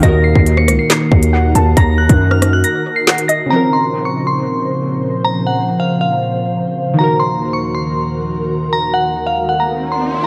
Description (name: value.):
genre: hip hop, drill.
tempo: 138 BPM.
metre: 4/4.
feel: half-time.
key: Bb minor.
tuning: A4 = 440 Hz.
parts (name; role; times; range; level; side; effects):
glassy synth bell; melody; 0.0-10.3 s; F5 to Db7; -21 LUFS; equal; chorus, phaser, low-pass filter, dub echo.
warbly dusty pluck; second line; 0.0-3.5 s; Eb5 to Bb5; -25 LUFS; equal; chorus, dub echo.
glassy digital keys; accompaniment; 0.0-10.3 s; Db3 to Bb4; -22 LUFS; equal; chorus, low-pass filter, dub echo.
ethereal airy pad; sustained chords; 0.0-10.3 s; Eb2 to C5; -23 LUFS; equal; ensemble chorus, built-in reverb.
distorted 808-style bass; bass; 0.0-2.6 s; Db2 to Gb2; -15 LUFS; equal; distortion.
drill drum kit; drums; 0.0-3.4 s; handclaps, hi-hat, kick drum, rim click, snare drum; -16 LUFS; equal; dub echo.
riser; sound effects; 9.3-10.3 s; none; -27 LUFS; equal; none.
room: light reverb, digital ambience.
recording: echo-heavy mix.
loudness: -15 LUFS.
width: mono.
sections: 0.0-3.5 A section; 3.5-10.3 B section.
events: break 2.6-3.5; riser 9.3-10.3.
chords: 0.0 Ebm; 3.5 Bbmadd9; 7.0 Ebm.